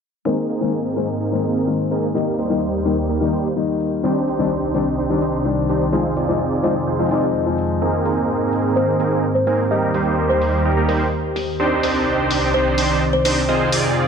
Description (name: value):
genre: EDM, festival progressive house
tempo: 127 BPM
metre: 4/4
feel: straight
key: unclear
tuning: A4 = 438 Hz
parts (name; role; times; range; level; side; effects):
- clear concert grand piano; accompaniment; 0.3-7.8 s; Eb3 to Eb4; -22 LUFS; left 5 dB; tape echo
- lush unison pad; sustained chords; 0.8-14.1 s; C2 to D5; -23 LUFS; right 1 dB; chorus
- supersaw chords; riff; 0.3-14.1 s; G3 to D5; -20 LUFS; right 2 dB; low-pass filter, tape echo
- electronic hi-hat; drums; 0.5-13.8 s; none; -27 LUFS; left 2 dB; none
- kalimba; melody; 8.8-13.6 s; G4 to Eb5; -22 LUFS; left 1 dB; tape echo
room: light reverb, small room ambience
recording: low-pass filter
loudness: -17 LUFS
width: side -6 dB against mid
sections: 0.3-14.1 A section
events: filter sweep on analog synth pad 0.3-14.1; filter sweep 0.3-14.1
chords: 0.3 Abadd9; 2.1 Eb; 4.0 Cmadd9; 5.9 Fm7; 7.8 Abadd9; 9.7 Eb; 11.6 Cmadd9; 13.5 Fm7